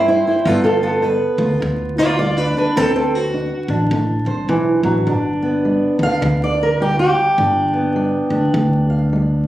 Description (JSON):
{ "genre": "acoustic country blues, solo or duo", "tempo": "104 BPM", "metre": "4/4", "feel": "swing 60% on 8ths", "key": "G mixolydian", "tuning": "A4 = 441 Hz", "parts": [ { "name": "fingerpicked steel-string acoustic guitar", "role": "melody", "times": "0.0-9.5 s", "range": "G2 to F5", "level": "-16 LUFS", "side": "equal", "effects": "none" }, { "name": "upright bass", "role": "bass", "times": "0.0-9.4 s", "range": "G1 to G2", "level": "-20 LUFS", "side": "equal", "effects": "none" } ], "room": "moderate booth ambience, RT60 0.2 s", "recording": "recorded on a phone in the room, studio reverb, vinyl crackle, compression", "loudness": "-15 LUFS", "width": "side -14 dB against mid", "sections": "0.0-5.1 A section; 5.1-9.5 B section", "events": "steel-string acoustic guitar solo 0.0-5.1", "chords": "0.5 G7; 2.8 D7; 5.1 G7" }